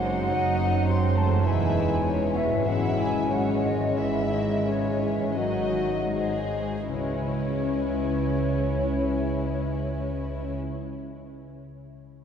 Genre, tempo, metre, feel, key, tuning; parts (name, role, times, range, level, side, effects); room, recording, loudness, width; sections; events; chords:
classical; 38-52 BPM; 3/4; rubato; C# minor; A4 = 438 Hz
warm chamber violin section; melody; 0.0-10.6 s; E4 to E5; -36 LUFS; left 3 dB
flute section; second line; 0.0-10.6 s; C#5 to B#5; -31 LUFS; equal
warm chamber violin section; second line; 0.0-10.6 s; B#3 to G#4; -35 LUFS; left 4 dB
warm clarinet; second line; 0.0-10.6 s; C#4 to D#4; -34 LUFS; left 4 dB
mellow bassoon; accompaniment; 0.0-10.6 s; E3 to G#3; -34 LUFS; equal
warm chamber viola section; accompaniment; 0.0-10.6 s; E3 to G#3; -35 LUFS; right 1 dB
warm French horn section; sustained chords; 0.0-10.5 s; C#3 to C#4; -36 LUFS; left 3 dB
concert harp; arpeggios; 0.0-10.8 s; E2 to C#5; -35 LUFS; left 5 dB
warm chamber cello section; bass; 0.0-10.6 s; E2 to C#3; -32 LUFS; right 2 dB
warm chamber double bass section; bass; 0.0-10.6 s; E1 to C#2; -30 LUFS; right 3 dB
wet cathedral reverb, RT60 4.2 s; dark, warm production; -23 LUFS; side -8 dB against mid
0.0-6.9 A section; 6.9-11.1 B section
slowing down 0.0-6.9
0.0 G#7/F#; 1.4 C#m/E; 2.7 C#m/G#; 5.4 G#7; 6.9 C#m